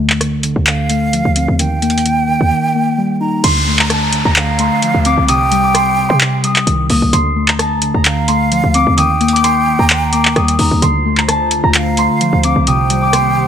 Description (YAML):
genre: hip hop, trap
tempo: 130 BPM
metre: 4/4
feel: half-time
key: D phrygian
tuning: A4 = 440 Hz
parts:
  - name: muted felt-like synth keys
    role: accompaniment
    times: 0.0-13.5 s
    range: C3 to Eb4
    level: -16 LUFS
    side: left 1 dB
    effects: chorus, low-pass filter
  - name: short 808-style bass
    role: bass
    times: 0.0-13.4 s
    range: C2 to C3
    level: -18 LUFS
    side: equal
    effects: none
  - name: booming analog drum machine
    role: drums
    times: 0.1-13.2 s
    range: crash cymbal, handclaps, hi-hat, rim click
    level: -16 LUFS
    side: equal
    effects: none
  - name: breathy concert flute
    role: second line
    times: 0.7-13.5 s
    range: F5 to Bb5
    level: -18 LUFS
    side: right 5 dB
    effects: digital delay
  - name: concert harp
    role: melody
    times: 3.4-13.5 s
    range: A5 to Eb6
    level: -16 LUFS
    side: left 1 dB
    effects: low-pass filter, digital delay
  - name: downlifter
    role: sound effects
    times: 3.4-7.1 s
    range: none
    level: -23 LUFS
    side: equal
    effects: none
  - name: airy breathy pad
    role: sustained chords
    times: 10.8-13.5 s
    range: D3 to C5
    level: -23 LUFS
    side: equal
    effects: chorus
room: light reverb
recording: none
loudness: -11 LUFS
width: side -8 dB against mid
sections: 0.0-3.4 A section; 3.4-13.5 B section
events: break 0.0-3.4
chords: 0.0 Dm7; 1.6 Eb; 3.4 Dm7; 5.3 Cm7; 7.1 Dm7; 9.0 Eb; 10.8 Dm7; 12.7 Cm7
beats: 0.21 0.67 1.13 | 1.59 2.05 2.52 2.98 | 3.44 3.90 4.36 4.82 | 5.28 5.75 6.21 6.67 | 7.13 7.59 8.05 8.52 | 8.98 9.44 9.90 10.36 | 10.82 11.28 11.75 12.21 | 12.67 13.13